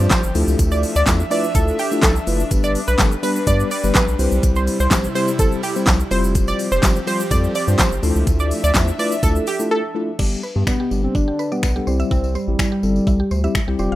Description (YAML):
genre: dance-pop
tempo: 125 BPM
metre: 4/4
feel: straight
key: unclear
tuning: A4 = 440 Hz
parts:
  - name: mellow tine electric piano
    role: accompaniment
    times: 0.0-14.0 s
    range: G3 to C5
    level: -23 LUFS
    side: left 2 dB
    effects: medium stereo tremolo, sidechain pumping
  - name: airy breathy pad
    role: sustained chords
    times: 0.0-10.2 s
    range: C3 to E5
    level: -27 LUFS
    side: equal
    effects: chorus, tremolo, sidechain pumping
  - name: round analog bass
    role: bass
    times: 0.0-14.0 s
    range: E1 to G2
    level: -20 LUFS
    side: equal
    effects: sidechain pumping
  - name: tambourine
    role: percussion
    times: 0.0-13.9 s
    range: none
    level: -36 LUFS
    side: left 6 dB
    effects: none
  - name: analog pluck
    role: melody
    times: 0.1-10.1 s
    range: G4 to D5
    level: -23 LUFS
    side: right 2 dB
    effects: chorus, ping-pong delay
  - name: smooth R&B drum kit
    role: drums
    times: 0.1-13.7 s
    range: crash cymbal, finger snaps, handclaps, hi-hat, kick drum, shaker, snare drum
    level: -19 LUFS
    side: equal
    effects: none
  - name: mallet-like synth pluck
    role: arpeggios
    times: 10.2-14.0 s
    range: D4 to F5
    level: -30 LUFS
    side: right 2 dB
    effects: chorus, sidechain pumping, ping-pong delay
  - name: soft octave-layered synth lead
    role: melody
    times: 10.7-13.8 s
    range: G3 to D4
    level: -22 LUFS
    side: equal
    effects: chorus, ping-pong delay
room: little or no reverb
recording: rough home demo mix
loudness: -16 LUFS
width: side -15 dB against mid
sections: 0.0-10.2 A section; 10.2-14.0 B section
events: drop 0.0-10.2; break 9.7-10.2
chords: 0.4 Dmadd9; 2.5 G; 4.2 C; 6.1 Fsus2; 8.0 Dmadd9; 10.2 G; 11.9 C